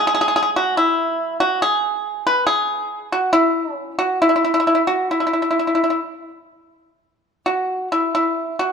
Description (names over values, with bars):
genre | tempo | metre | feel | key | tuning
chinese traditional, Chinese solo plucked strings | 60-72 BPM | 4/4 | rubato | unclear | A4 = 440 Hz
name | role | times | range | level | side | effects
pipa | solo | 0.0-8.7 s | G#3 to B4 | -17 LUFS | equal | none
room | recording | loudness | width
moderate recital hall reverb, RT60 1.6 s | dark, warm production | -17 LUFS | side -6 dB against mid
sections
0.0-7.0 A section; 7.0-8.7 B section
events
none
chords
none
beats
0.76 1.61 2.48 | 3.34 4.21 5.11 6.07 | 7.02 7.91